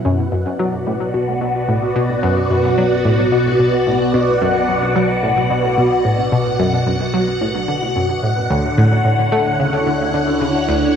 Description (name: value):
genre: ambient, sequencer-driven space music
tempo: 110 BPM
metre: 4/4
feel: straight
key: B minor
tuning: A4 = 440 Hz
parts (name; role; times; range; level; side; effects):
- phased string machine; sustained chords; 0.0-11.0 s; B2 to F#5; -16 LUFS; equal; ensemble chorus, phaser, cassette tape
- analog pluck; riff; 0.0-10.8 s; D2 to A3; -18 LUFS; equal; chorus, phaser, cassette tape, tape echo
- round analog bass; bass; 0.0-11.0 s; B1 to D2; -38 LUFS; equal; none
- thumb-piano-like synth pluck; arpeggios; 0.1-10.8 s; A3 to F#5; -34 LUFS; right 6 dB; none
room: wet studio reverb, RT60 0.6 s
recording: home recording on cassette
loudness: -14 LUFS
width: side -8 dB against mid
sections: 0.0-11.0 A section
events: fade-in on analog synth bass 0.0-11.0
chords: 0.0 Bm; 8.5 Dmaj7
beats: 0.32 0.87 1.42 | 1.96 2.50 3.05 3.60 | 4.14 4.69 5.23 5.78 | 6.32 6.87 7.42 7.96 | 8.51 9.05 9.60 10.14 | 10.69